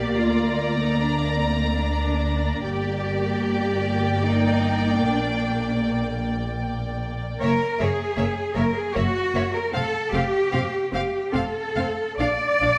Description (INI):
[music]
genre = classical, slow romantic movement for string orchestra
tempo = 65-79 BPM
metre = 3/4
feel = rubato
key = Bb major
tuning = A4 = 440 Hz
[part]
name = warm symphonic violin section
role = melody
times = 0.0-12.7 s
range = Fb5 to Bb5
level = -35 LUFS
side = equal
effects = none
[part]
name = rich symphonic violin section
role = second line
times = 0.0-12.7 s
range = Db5 to F5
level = -34 LUFS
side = equal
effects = none
[part]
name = warm symphonic viola section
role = accompaniment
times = 0.0-12.7 s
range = Bb3 to D4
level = -29 LUFS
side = equal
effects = none
[part]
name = warm symphonic cello section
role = bass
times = 0.0-12.8 s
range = Bb3 to D5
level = -28 LUFS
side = equal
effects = none
[part]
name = warm symphonic double bass section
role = bass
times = 0.0-12.7 s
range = F1 to D2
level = -29 LUFS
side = equal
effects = none
[sound]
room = moderate scoring stage reverb, RT60 1.5 s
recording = none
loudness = -24 LUFS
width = mono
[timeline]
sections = 0.0-12.8 A section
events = none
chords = 0.2 Bb/D; 2.6 Gm; 5.0 Gm/Bb; 7.4 Gb7; 9.7 F; 12.2 Bb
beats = | 0.16 0.96 1.76 | 2.64 3.46 4.25 | 5.04 5.83 6.62 | 7.41 8.18 8.94 | 9.74 10.53 11.34 | 12.19